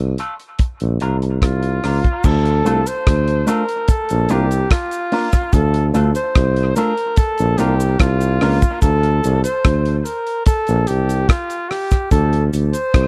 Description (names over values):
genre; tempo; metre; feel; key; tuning
dub reggae; 73 BPM; 4/4; straight; unclear; A4 = 439 Hz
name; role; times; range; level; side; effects
mellow tuba; bass; 0.0-13.1 s; Bb1 to D2; -19 LUFS; equal; none
electric guitar with an envelope filter; accompaniment; 0.2-8.6 s; A3 to Bb4; -25 LUFS; equal; high-pass filter, low-pass filter, dub echo
damped 70s drum kit; drums; 0.2-13.1 s; crash cymbal, hi-hat, kick drum, rim click; -18 LUFS; equal; none
warm flugelhorn; melody; 1.4-13.1 s; F4 to C5; -23 LUFS; equal; dub echo
cabasa; percussion; 2.2-12.9 s; none; -39 LUFS; equal; none
room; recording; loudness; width
studio reverb; dry, close 1970s-style studio recording; -17 LUFS; mono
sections
0.0-2.2 A section; 2.2-13.1 B section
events
none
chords
0.0 Dm; 0.6 Bb; 2.2 Dm; 3.9 Bb; 5.5 Dm; 7.2 Bb; 8.8 Bbmaj9/C; 10.5 Gm11/Bb; 12.1 Bbmaj9 (rootless)